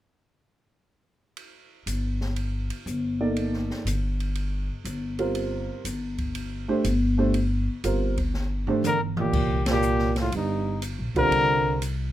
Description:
modal jazz; 121 BPM; 4/4; swing 68% on 8ths; C dorian; A4 = 441 Hz
open jazz drum kit; drums; 1.4-12.0 s; crash cymbal, hi-hat, kick drum, ride cymbal, snare drum, toms; -34 LUFS; right 1 dB
upright bass; bass; 1.9-12.1 s; G1 to C2; -27 LUFS; left 1 dB
warm upright piano; accompaniment; 3.2-11.8 s; G3 to D5; -27 LUFS; right 3 dB
warm trombone; second line; 8.8-11.8 s; G2 to D3; -27 LUFS; right 5 dB
breathy trumpet; melody; 8.9-11.8 s; Eb4 to Bb4; -25 LUFS; left 4 dB
light reverb; close, detailed microphones; -23 LUFS; side -13 dB against mid
1.4-9.3 A section; 9.3-12.1 B section
drum fill 8.3-9.3; band accent 9.6
1.4 C7sus2
| 1.37 1.87 2.37 2.87 | 3.36 3.86 4.36 4.86 | 5.35 5.85 6.35 6.85 | 7.34 7.84 8.34 8.84 | 9.33 9.83 10.33 10.82 | 11.32 11.82

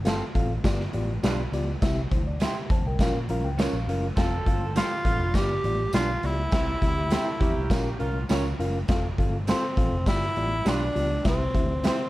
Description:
uptempo 1960s-style soul; 102 BPM; 4/4; straight; F major; A4 = 440 Hz
mellow reed electric piano; accompaniment; 0.0-12.1 s; G2 to Bb5; -31 LUFS; left 2 dB; fast tremolo
vintage muted picked electric bass; bass; 0.0-11.9 s; F1 to Bb2; -29 LUFS; equal; tube saturation
electric guitar through a small old amp; stabs; 0.1-12.0 s; G3 to Db5; -32 LUFS; right 4 dB; lush chorus
raw garage drum kit; drums; 0.1-12.0 s; hi-hat, kick drum, snare drum; -26 LUFS; equal
tambourine; percussion; 0.1-12.0 s; -45 LUFS; right 2 dB
clear saxophone section; second line; 4.2-8.2 s; G3 to A4; -35 LUFS; right 3 dB
clear tenor saxophone; melody; 4.8-12.1 s; C4 to G4; -28 LUFS; equal
light reverb; -23 LUFS; side -17 dB against mid
0.0-12.1 A section
reed electric piano fill 3.0-4.2
0.0 F; 0.7 G7; 1.8 C; 3.0 Bbm; 4.2 F; 5.4 G7; 6.5 C; 7.7 Bbm; 8.9 F; 10.1 G7; 11.3 C
0.06 0.65 1.24 | 1.82 2.41 3.00 3.59 | 4.18 4.76 5.35 5.94 | 6.53 7.12 7.71 8.30 | 8.89 9.48 10.07 10.66 | 11.25 11.84

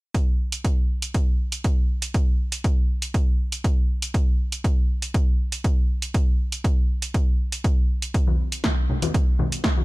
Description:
house; 120 BPM; 4/4; straight
electronic kick drum; drums; 0.1-9.7 s; -20 LUFS; equal
punchy analog drum machine; drums; 0.1-9.7 s; hi-hat, snare drum; -28 LUFS; right 1 dB; sidechain pumping on hats
tambourine and congas; percussion; 8.1-9.8 s; -27 LUFS; left 2 dB; sidechain pumping on perc, low-pass filter on perc
little or no reverb; -20 LUFS; side -21 dB against mid
0.1-9.8 A section
| 0.14 0.65 1.15 1.65 | 2.15 2.65 3.15 3.65 | 4.14 4.64 5.14 5.64 | 6.14 6.64 7.14 7.64 | 8.14 8.64 9.14 9.64

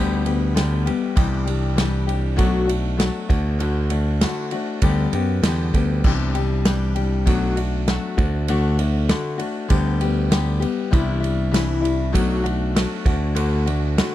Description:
folk rock and heartland rock; 98 BPM; 4/4; straight; D mixolydian; A4 = 440 Hz
picked steel-string acoustic guitar; accompaniment; 0.0-14.1 s; B2 to G4; -23 LUFS; left 5 dB
modern bright picked electric bass; bass; 0.0-14.0 s; B1 to F#2; -21 LUFS; right 1 dB
unplugged drum kit; drums; 0.3-14.1 s; crash cymbal, kick drum, ride cymbal, snare drum; -23 LUFS; right 1 dB
little or no reverb; dry, close 1970s-style studio recording; -18 LUFS; side -13 dB against mid
0.0-14.1 A section
0.0 G/D; 1.2 Cadd9; 2.4 Bm7; 3.3 D; 4.8 G/D; 6.0 Cadd9; 7.3 Bm7; 8.2 D; 9.7 G/D; 10.9 Cadd9; 12.1 Bm7; 13.1 D
0.56 | 1.17 1.78 2.39 3.00 | 3.61 4.22 4.83 5.44 | 6.05 6.66 7.27 7.88 | 8.49 9.10 9.71 10.32 | 10.93 11.54 12.15 12.76 | 13.37 13.98

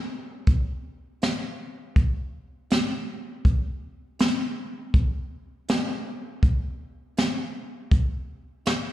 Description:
blues; 81 BPM; 4/4; straight
jazz brush drum kit; drums; 0.5-8.8 s; hi-hat, kick drum, snare drum; -22 LUFS; equal
moderate lush hall reverb, RT60 2.3 s; live gig heard through the venue's PA, club reverb; -24 LUFS; side -14 dB against mid
0.0-8.9 A section
| 0.47 1.22 1.96 2.71 | 3.45 4.19 4.94 5.68 | 6.42 7.17 7.91 8.66

